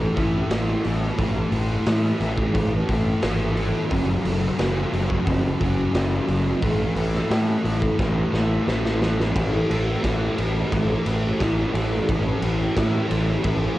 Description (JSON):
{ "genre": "rock, shoegaze and dream pop", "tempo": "88 BPM", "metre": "4/4", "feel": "straight", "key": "A major", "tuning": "A4 = 440 Hz", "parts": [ { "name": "thick fuzz guitar", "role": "riff", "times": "0.0-13.8 s", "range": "F#2 to A3", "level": "-24 LUFS", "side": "equal", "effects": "distortion, ensemble chorus" }, { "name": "growling fingered electric bass", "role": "bass", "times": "0.0-13.7 s", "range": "F#1 to A2", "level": "-24 LUFS", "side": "equal", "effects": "overdrive, tube saturation" }, { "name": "raw garage drum kit", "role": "drums", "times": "0.2-13.6 s", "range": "hi-hat, kick drum, ride cymbal, snare drum", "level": "-26 LUFS", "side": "equal", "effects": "cassette tape" } ], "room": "light reverb", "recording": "home recording on cassette", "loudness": "-20 LUFS", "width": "side -15 dB against mid", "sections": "0.0-9.4 A section; 9.4-13.8 B section", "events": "drum fill 8.0-9.4", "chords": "0.0 A5; 3.9 F#5; 6.6 A5" }